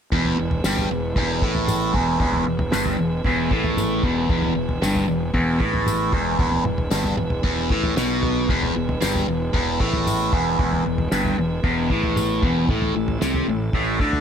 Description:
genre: psychedelic rock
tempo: 114 BPM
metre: 4/4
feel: straight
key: E major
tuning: A4 = 439 Hz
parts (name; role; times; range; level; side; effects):
- tonewheel organ; sustained chords; 0.1-14.2 s; E3 to E5; -30 LUFS; right 5 dB; slow rotary speaker
- biting overdriven guitar; riff; 0.1-14.2 s; E2 to D3; -21 LUFS; equal; phaser
- fuzz fingered electric bass; bass; 0.1-14.2 s; E1 to D2; -27 LUFS; equal; overdrive
- cloth-damped thuddy drum kit; drums; 0.1-14.2 s; kick drum, snare drum, toms; -25 LUFS; equal; none
- tambourine; percussion; 0.6-13.3 s; none; -35 LUFS; left 11 dB; none
room: light reverb, studio reverb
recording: none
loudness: -19 LUFS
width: side -8 dB against mid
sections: 0.1-14.2 A section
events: none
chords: 0.1 E; 12.7 A5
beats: | 0.12 0.64 1.17 1.69 | 2.21 2.73 3.26 3.78 | 4.30 4.83 5.35 5.87 | 6.39 6.92 7.44 7.97 | 8.49 9.02 9.54 10.06 | 10.59 11.11 11.64 12.16 | 12.69 13.21 13.74

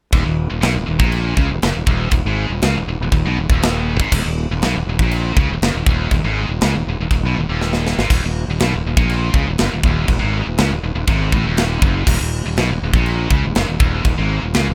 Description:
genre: heavy metal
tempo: 121 BPM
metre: 4/4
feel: straight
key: Eb minor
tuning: A4 = 440 Hz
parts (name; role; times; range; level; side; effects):
- scooped high-gain guitar; riff; 0.1-14.7 s; Eb2 to Db3; -25 LUFS; equal; distortion
- fuzz fingered electric bass; bass; 0.1-14.7 s; Eb1 to Db2; -21 LUFS; equal; overdrive
- tight metal drum kit; drums; 0.1-14.7 s; china cymbal, crash cymbal, kick drum, snare drum, splash cymbal; -21 LUFS; equal; none
room: little or no reverb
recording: rough home demo mix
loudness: -18 LUFS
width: mono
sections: 0.1-14.7 A section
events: drum fill 7.6-8.1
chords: 0.1 Eb5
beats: | 0.14 0.64 1.13 1.63 | 2.13 2.63 3.12 3.62 | 4.12 4.62 5.12 5.61 | 6.11 6.61 7.11 7.60 | 8.10 8.60 9.10 9.59 | 10.09 10.59 11.08 11.58 | 12.08 12.57 13.07 13.57 | 14.06 14.56

